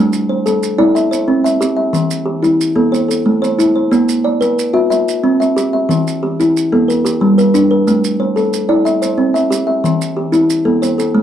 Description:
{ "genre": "southern african traditional, mbira-style interlocking cycle", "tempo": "122 BPM (dotted quarters)", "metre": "12/8", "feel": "straight", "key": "A equiheptatonic", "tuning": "A4 = 438 Hz", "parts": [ { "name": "kalimba", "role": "arpeggios", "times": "0.0-11.2 s", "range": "E3 to E5", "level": "-12 LUFS", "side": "equal", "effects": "none" }, { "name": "maracas", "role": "percussion", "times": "0.1-11.1 s", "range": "none", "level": "-28 LUFS", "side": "right 7 dB", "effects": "none" } ], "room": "moderate small room reverb, RT60 0.5 s", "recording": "worn, warbling old tape, cassette tape, warbly pitch drift", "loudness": "-12 LUFS", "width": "side -10 dB against mid", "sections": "0.0-11.2 A section", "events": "none", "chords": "0.0 Am; 1.0 C; 1.9 Em; 2.9 Am; 3.9 Bm; 4.9 C; 5.9 Em; 6.9 G; 7.9 Am; 8.9 C; 9.8 Em" }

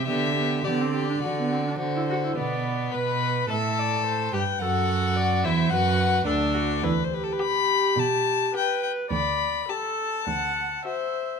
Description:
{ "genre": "quick classical-period movement for string quartet", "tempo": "105 BPM", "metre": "4/4", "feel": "straight", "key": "unclear", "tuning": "A4 = 440 Hz", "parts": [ { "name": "warm violin", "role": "melody", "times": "0.0-11.4 s", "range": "A4 to B5", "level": "-27 LUFS", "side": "left 12 dB", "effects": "none" }, { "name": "rich violin", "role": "second line", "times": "0.0-11.3 s", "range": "B3 to B4", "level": "-29 LUFS", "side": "left 4 dB", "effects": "none" }, { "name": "rich viola", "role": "accompaniment", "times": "0.0-11.4 s", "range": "B3 to F#5", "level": "-29 LUFS", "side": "right 4 dB", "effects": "none" }, { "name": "rich cello", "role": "bass", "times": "0.1-10.7 s", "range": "D2 to D3", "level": "-27 LUFS", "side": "right 6 dB", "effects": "none" } ], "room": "light reverb", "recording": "close, detailed microphones", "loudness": "-22 LUFS", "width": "side -6 dB against mid", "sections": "0.0-2.4 A section; 2.4-11.4 B section", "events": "none", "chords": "0.1 G/D; 1.2 D; 2.4 Bm; 3.5 G69; 4.6 A5; 5.7 D/F#; 6.8 Em; 9.1 Dsus4; 10.3 D" }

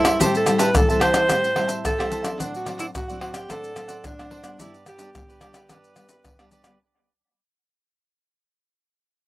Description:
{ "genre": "samba and choro", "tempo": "109 BPM", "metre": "4/4", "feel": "straight", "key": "unclear", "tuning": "A4 = 440 Hz", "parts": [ { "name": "clear alto saxophone", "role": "melody", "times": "0.0-6.5 s", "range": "D4 to C5", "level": "-24 LUFS", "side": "equal", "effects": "slapback echo" }, { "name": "cavaquinho", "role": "accompaniment", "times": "0.0-6.8 s", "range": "D4 to A5", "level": "-28 LUFS", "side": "right 4 dB", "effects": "slapback echo" }, { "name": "nylon-string guitar", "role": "accompaniment", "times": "0.0-6.8 s", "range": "G2 to E4", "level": "-29 LUFS", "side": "left 3 dB", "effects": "none" }, { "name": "maracas, pandeiro, tamborim and surdo", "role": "percussion", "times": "0.0-6.8 s", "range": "none", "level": "-24 LUFS", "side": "left 1 dB", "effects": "none" } ], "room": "little or no reverb", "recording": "recorded outdoors, with no room sound", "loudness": "-19 LUFS", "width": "side -17 dB against mid", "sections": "0.0-6.8 A section", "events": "fade-out 0.0-6.8", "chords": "0.2 Am7; 2.4 D7/A; 4.6 G" }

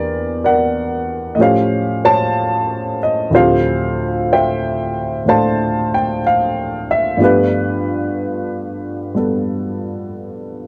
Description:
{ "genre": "jazz ballad", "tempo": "62 BPM", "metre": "4/4", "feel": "swing 67% on 8ths", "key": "unclear", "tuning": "A4 = 443 Hz", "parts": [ { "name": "dark upright piano", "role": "solo", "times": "0.0-10.7 s", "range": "D2 to A5", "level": "-17 LUFS", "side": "equal", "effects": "none" } ], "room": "light reverb", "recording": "close, detailed microphones", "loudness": "-17 LUFS", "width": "mono", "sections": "0.0-10.7 A section", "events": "none", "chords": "0.0 Em7b5; 1.4 A7alt; 3.3 Dm11; 7.2 G9" }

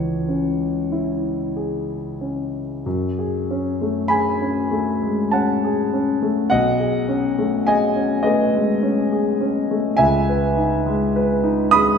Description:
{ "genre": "classical, impressionist solo piano", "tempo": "46-52 BPM", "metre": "3/4", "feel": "rubato", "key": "F# dorian", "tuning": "A4 = 438 Hz", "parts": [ { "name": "warm grand piano", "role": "solo", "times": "0.0-12.0 s", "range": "B1 to D#6", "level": "-18 LUFS", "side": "left 1 dB", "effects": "none" } ], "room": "wet recital hall reverb, RT60 1.6 s", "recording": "recorded in a church or concert hall", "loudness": "-18 LUFS", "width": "side -6 dB against mid", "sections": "0.0-2.9 A section; 2.9-12.0 B section", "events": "none", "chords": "0.0 C#m; 2.9 F#madd9; 6.5 B13; 10.0 C#m9" }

